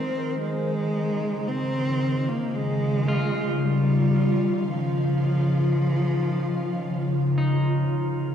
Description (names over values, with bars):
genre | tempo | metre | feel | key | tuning
ambient | 56 BPM | 4/4 | straight | unclear | A4 = 440 Hz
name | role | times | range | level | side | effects
rich cello | melody | 0.0-7.9 s | F3 to C4 | -27 LUFS | right 1 dB | tape echo
ethereal airy pad | sustained chords | 0.0-8.3 s | Db3 to C5 | -23 LUFS | left 1 dB | ensemble chorus, built-in reverb, phaser
analog drone | drone | 0.2-8.3 s | none | barely audible | none | none
electric guitar at the edge of break-up | arpeggios | 3.1-8.3 s | Eb4 to F4 | -35 LUFS | equal | tape echo
room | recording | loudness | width
wet concert hall reverb, RT60 2.0 s | dark, warm production | -22 LUFS | side -8 dB against mid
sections
0.0-8.3 A section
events
none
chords
0.4 Dbmaj7